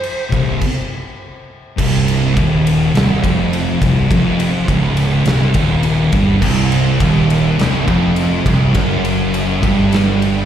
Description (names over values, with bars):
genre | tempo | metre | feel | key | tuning
stoner and doom metal | 103 BPM | 4/4 | straight | unclear | A4 = 440 Hz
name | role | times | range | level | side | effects
big rock drum kit | drums | 0.0-10.3 s | crash cymbal, kick drum, ride cymbal, snare drum | -20 LUFS | equal | none
thick fuzz guitar | riff | 0.3-10.5 s | C2 to G2 | -18 LUFS | left 7 dB | distortion, slapback echo
thick fuzz guitar | riff | 0.3-10.5 s | C2 to G2 | -16 LUFS | right 5 dB | distortion, slapback echo
fuzz fingered electric bass | bass | 0.3-10.5 s | C1 to G1 | -21 LUFS | equal | overdrive
high-gain distorted guitar | riff | 6.4-10.5 s | C2 to G2 | -20 LUFS | equal | distortion
room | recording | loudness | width
light reverb | live gig heard through the venue's PA, recital hall reverb | -12 LUFS | side -10 dB against mid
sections
0.0-1.8 A section; 1.8-10.5 B section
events
stop 0.6-1.8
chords
0.0 N.C.; 1.8 Cm